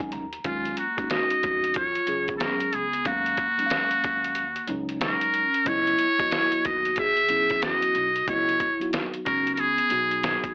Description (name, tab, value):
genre	hip hop, jazz-hop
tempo	92 BPM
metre	4/4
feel	swing 63% on 16ths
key	Eb phrygian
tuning	A4 = 440 Hz
part	mellow tine electric piano	accompaniment	0.0-10.5 s	Gb3 to Bb5	-32 LUFS	equal	medium stereo tremolo
part	upright bass	bass	0.0-10.3 s	Cb2 to Eb3	-40 LUFS	equal	none
part	trip hop sampler-style drum kit	drums	0.0-10.5 s	hi-hat, kick drum, snare drum	-32 LUFS	equal	none
part	vibraphone with soft mallets	second line	0.4-10.5 s	Ab3 to Ab4	-30 LUFS	equal	none
part	trumpet with metal mute	melody	0.5-10.5 s	F4 to Fb5	-23 LUFS	equal	none
room	light reverb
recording	dry, gritty hardware recording, AM radio sound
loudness	-22 LUFS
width	side -34 dB against mid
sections	0.4-10.5 A section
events	tine electric piano fill 0.0-0.4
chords	0.4 Ebm11; 5.7 Dbm11